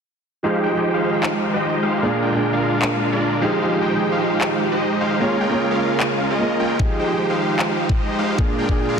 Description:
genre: future bass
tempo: 151 BPM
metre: 4/4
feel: swing 53% on 16ths, half-time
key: F minor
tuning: A4 = 439 Hz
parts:
  - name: dark grand piano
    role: accompaniment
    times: 0.4-9.0 s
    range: Bb2 to Eb5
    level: -22 LUFS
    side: right 2 dB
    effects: sidechain pumping, ping-pong delay
  - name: airy breathy pad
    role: sustained chords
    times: 0.9-9.0 s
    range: Db3 to G5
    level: -28 LUFS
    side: right 2 dB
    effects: chorus, sidechain pumping
  - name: supersaw chords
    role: riff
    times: 0.4-9.0 s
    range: Ab3 to G5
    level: -21 LUFS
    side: equal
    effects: cassette tape, sidechain pumping, low-pass filter, ping-pong delay
  - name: electronic handclaps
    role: drums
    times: 1.2-7.7 s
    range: none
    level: -25 LUFS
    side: left 1 dB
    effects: studio reverb
  - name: electronic kick drum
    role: drums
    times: 6.8-8.8 s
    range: none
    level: -20 LUFS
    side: left 1 dB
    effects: studio reverb
room: moderate lush hall reverb, RT60 2.0 s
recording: dense, heavily limited modern master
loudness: -17 LUFS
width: side -6 dB against mid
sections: 0.4-9.0 A section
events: none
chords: 0.4 Fm9; 2.0 Bb7; 3.4 Fm9; 5.2 Bbm7; 6.8 Fm9; 8.4 Bb7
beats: | 0.44 0.83 1.23 1.63 | 2.03 2.42 2.82 3.22 | 3.62 4.01 4.41 4.81 | 5.21 5.60 6.00 6.40 | 6.80 7.19 7.59 7.99 | 8.38 8.78

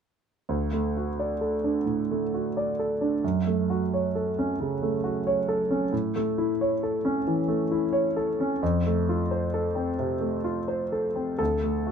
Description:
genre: neoclassical minimalist piano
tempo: 88 BPM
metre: 4/4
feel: rubato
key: D major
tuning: A4 = 438 Hz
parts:
  - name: clear concert grand piano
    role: solo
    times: 0.5-11.9 s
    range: D2 to D5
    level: -24 LUFS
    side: right 1 dB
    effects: none
room: light reverb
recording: minimal, uncompressed stereo recording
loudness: -24 LUFS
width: side -7 dB against mid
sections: 0.5-11.4 A section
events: none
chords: 0.5 D; 3.2 F#m; 5.9 A; 8.6 F; 11.4 D5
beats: | 0.49 1.18 1.86 2.55 | 3.23 3.90 4.58 5.25 | 5.92 6.59 7.25 7.92 | 8.61 9.30 9.98 10.68 | 11.40

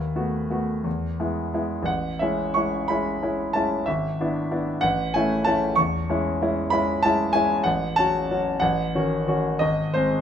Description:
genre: classical, romantic character piece for solo piano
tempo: 62 BPM (dotted quarters)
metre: 6/8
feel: uneven beats, rubato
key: C# minor from 5.8 s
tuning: A4 = 440 Hz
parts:
  - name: clear concert grand piano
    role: solo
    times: 0.0-10.2 s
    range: G#1 to C#6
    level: -21 LUFS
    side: equal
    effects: none
room: moderate large studio reverb, RT60 0.9 s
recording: minimal, uncompressed stereo recording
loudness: -21 LUFS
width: side -8 dB against mid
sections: 0.0-10.2 A section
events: none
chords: 0.0 B7/D#; 0.9 E; 1.9 Amaj7; 3.9 E7/G#; 4.8 A; 5.8 C#m/E; 7.7 F#m/A; 8.6 D#m7b5/A; 9.6 G#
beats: 0.85 | 1.87 2.88 | 3.86 4.82 | 5.77 6.72 | 7.67 8.62 | 9.61

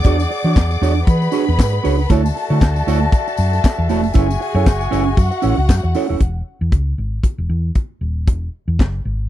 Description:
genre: disco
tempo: 117 BPM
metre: 4/4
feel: swing 56% on 16ths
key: unclear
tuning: A4 = 442 Hz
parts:
  - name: dark studio string section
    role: second line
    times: 0.0-6.2 s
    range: F#4 to D6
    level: -24 LUFS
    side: left 2 dB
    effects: none
  - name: flute section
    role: sustained chords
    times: 0.0-6.2 s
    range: F#4 to C#6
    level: -26 LUFS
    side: left 2 dB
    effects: none
  - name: hollow-body short-scale fingered electric bass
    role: bass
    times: 0.0-9.3 s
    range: D#1 to E3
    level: -18 LUFS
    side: equal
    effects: none
  - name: tight funk drum kit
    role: drums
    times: 0.0-8.9 s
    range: handclaps, hi-hat, kick drum, snare drum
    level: -14 LUFS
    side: equal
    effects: none
  - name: tambourine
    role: percussion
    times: 0.0-6.1 s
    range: none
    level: -38 LUFS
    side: left 21 dB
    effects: none
  - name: mellow electric guitar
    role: accompaniment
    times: 0.1-6.2 s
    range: A3 to C#5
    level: -20 LUFS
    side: right 7 dB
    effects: wide subtle chorus
room: small room ambience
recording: dry, close 1970s-style studio recording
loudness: -14 LUFS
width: side -13 dB against mid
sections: 0.0-6.2 A section; 6.2-9.3 B section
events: none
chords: 0.0 E13; 2.1 Dmaj9; 4.2 F#m7; 6.2 E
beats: | 0.04 0.56 1.07 1.59 | 2.10 2.62 3.13 3.64 | 4.16 4.67 5.19 5.70 | 6.21 6.73 7.25 7.76 | 8.28 8.79

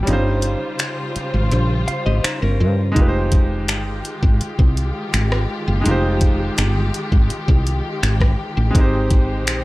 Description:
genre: contemporary R&B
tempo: 83 BPM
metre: 4/4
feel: straight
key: unclear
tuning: A4 = 441 Hz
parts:
  - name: clear baby grand piano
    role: accompaniment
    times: 0.0-9.6 s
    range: G3 to C5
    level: -25 LUFS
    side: right 1 dB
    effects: none
  - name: dark studio string section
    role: sustained chords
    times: 0.0-9.6 s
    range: Db3 to C5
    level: -26 LUFS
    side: left 1 dB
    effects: none
  - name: woody fretless electric bass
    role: bass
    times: 0.0-9.6 s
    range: F1 to G2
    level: -19 LUFS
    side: equal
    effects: analog chorus
  - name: smooth R&B drum kit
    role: drums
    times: 0.1-9.6 s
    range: finger snaps, hi-hat, kick drum, rim click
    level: -17 LUFS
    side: equal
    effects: none
  - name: direct-recorded clean electric guitar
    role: arpeggios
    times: 1.9-2.9 s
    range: Db4 to F5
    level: -26 LUFS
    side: left 1 dB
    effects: wide subtle chorus, analog delay
room: little or no reverb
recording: dry, gritty hardware recording, cassette tape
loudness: -16 LUFS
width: side -19 dB against mid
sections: 0.0-3.0 A section; 3.0-9.6 B section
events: break 0.1-3.0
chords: 0.1 Eb13/G; 3.0 Fm9; 8.7 Abmaj7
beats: | 0.07 0.80 1.52 2.24 | 2.96 3.69 4.41 5.13 | 5.86 6.58 7.30 8.02 | 8.75 9.47

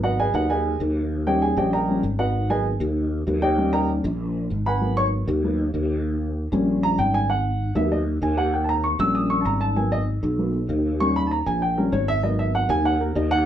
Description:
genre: latin, salsa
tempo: 194 BPM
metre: 4/4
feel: straight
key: G# minor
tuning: A4 = 435 Hz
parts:
  - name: dark upright piano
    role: accompaniment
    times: 0.0-13.5 s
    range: F#3 to E6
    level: -22 LUFS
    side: equal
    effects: none
  - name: sustaining fretless electric bass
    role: bass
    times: 0.0-13.5 s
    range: G#1 to D#2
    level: -23 LUFS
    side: equal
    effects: ensemble chorus
room: wet studio reverb, RT60 0.5 s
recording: heard from further back in the room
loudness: -20 LUFS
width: side -10 dB against mid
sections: 0.0-13.5 A section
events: upright piano solo 0.0-13.5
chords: 0.0 G#m7; 6.1 D#7; 7.3 G#m7; 8.5 D#7; 9.8 G#m7; 11.0 D#7; 12.2 G#m7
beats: 0.19 0.49 0.80 | 1.11 1.42 1.73 2.04 | 2.35 2.65 2.96 3.27 | 3.58 3.89 4.20 4.51 | 4.82 5.13 5.44 5.75 | 6.05 6.36 6.67 6.98 | 7.29 7.60 7.91 8.22 | 8.53 8.84 9.15 9.46 | 9.77 10.07 10.38 10.69 | 11.00 11.31 11.62 11.93 | 12.23 12.54 12.85 13.16

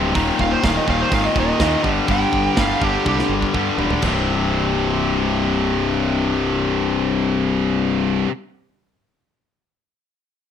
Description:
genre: heavy metal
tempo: 124 BPM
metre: 4/4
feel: straight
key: C minor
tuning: A4 = 439 Hz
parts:
  - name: heavy high-gain guitar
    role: riff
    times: 0.0-8.3 s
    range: C2 to G3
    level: -24 LUFS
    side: right 18 dB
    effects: distortion
  - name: tight distorted guitar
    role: riff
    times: 0.0-8.3 s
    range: C2 to G3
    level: -20 LUFS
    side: left 7 dB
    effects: distortion
  - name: fuzz fingered electric bass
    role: bass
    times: 0.0-8.2 s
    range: C1 to G2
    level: -24 LUFS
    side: right 2 dB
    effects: overdrive
  - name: tight metal drum kit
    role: drums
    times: 0.2-4.1 s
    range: crash cymbal, hi-hat, kick drum, snare drum, toms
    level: -24 LUFS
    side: right 2 dB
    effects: none
  - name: high-gain lead guitar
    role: melody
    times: 0.4-3.3 s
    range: G4 to G5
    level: -23 LUFS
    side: right 5 dB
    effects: distortion
room: studio reverb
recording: rough home demo mix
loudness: -16 LUFS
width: side -8 dB against mid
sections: 0.0-4.0 A section; 4.0-7.9 B section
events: lead electric guitar solo 0.0-4.0; drum fill 3.0-4.0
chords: 0.1 Eb5; 1.8 G5; 4.0 C5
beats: | 0.14 0.63 1.11 1.59 | 2.08 2.56 3.05 3.53 | 4.02 4.50 4.99 5.47 | 5.96 6.45 6.93 7.42

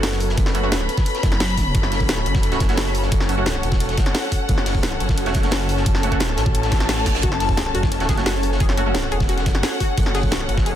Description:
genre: dark technical drum and bass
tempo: 175 BPM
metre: 4/4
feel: straight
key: F# minor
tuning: A4 = 440 Hz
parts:
  - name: deep dark ambient pad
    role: sustained chords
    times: 0.0-10.8 s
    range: F#4 to F#5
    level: -30 LUFS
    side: equal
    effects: chorus, built-in reverb, sidechain pumping
  - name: orchestra-hit-like synth stab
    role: stabs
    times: 0.0-8.9 s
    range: A3 to F#4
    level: -29 LUFS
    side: right 4 dB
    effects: built-in reverb, ping-pong delay
  - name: wide detuned saw bass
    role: bass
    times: 0.0-10.8 s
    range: E1 to A1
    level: -23 LUFS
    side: equal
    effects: chorus, overdrive
  - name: crunchy breakbeat drum kit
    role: drums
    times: 0.0-10.7 s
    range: hi-hat, snare drum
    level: -34 LUFS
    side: equal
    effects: none
  - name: drum and bass drum kit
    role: drums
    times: 0.0-10.7 s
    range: hi-hat, snare drum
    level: -25 LUFS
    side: equal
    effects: studio reverb
  - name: dark chamber string section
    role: texture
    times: 0.0-10.8 s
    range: C#4 to B5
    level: -26 LUFS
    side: left 2 dB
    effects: sidechain pumping
  - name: electronic kick drum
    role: drums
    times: 0.4-10.6 s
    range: none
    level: -20 LUFS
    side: equal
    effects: overdrive, studio reverb
  - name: pulsing pluck wobble bass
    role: bass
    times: 1.2-1.7 s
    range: F#1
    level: -22 LUFS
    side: equal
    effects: chorus
  - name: reverse cymbal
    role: sound effects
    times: 6.7-7.2 s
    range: none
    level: -31 LUFS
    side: right 6 dB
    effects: none
  - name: wide unison pluck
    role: arpeggios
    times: 7.2-10.8 s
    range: F#4 to G#4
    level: -29 LUFS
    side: left 3 dB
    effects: sidechain pumping, ping-pong delay
room: little or no reverb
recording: dense, heavily limited modern master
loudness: -17 LUFS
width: side -11 dB against mid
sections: 0.0-10.8 A section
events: reverse cymbal 6.7-7.2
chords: 0.0 F#m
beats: 0.03 | 0.38 0.72 1.06 1.40 | 1.75 2.09 2.43 2.77 | 3.12 3.46 3.80 4.15 | 4.49 4.83 5.17 5.52 | 5.86 6.20 6.55 6.89 | 7.23 7.58 7.92 8.26 | 8.60 8.95 9.29 9.63 | 9.97 10.32 10.66

